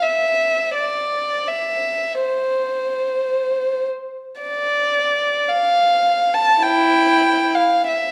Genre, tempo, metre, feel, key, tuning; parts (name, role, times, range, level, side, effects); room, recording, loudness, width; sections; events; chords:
classical, free, expressive piece for unaccompanied violin; 45-57 BPM; 4/4; rubato; A4 = 440 Hz
warm violin; solo; 0.0-8.1 s; E4 to A5; -19 LUFS; equal
wet recital hall reverb, RT60 1.4 s; dark, warm production; -19 LUFS; mono
0.0-8.1 A section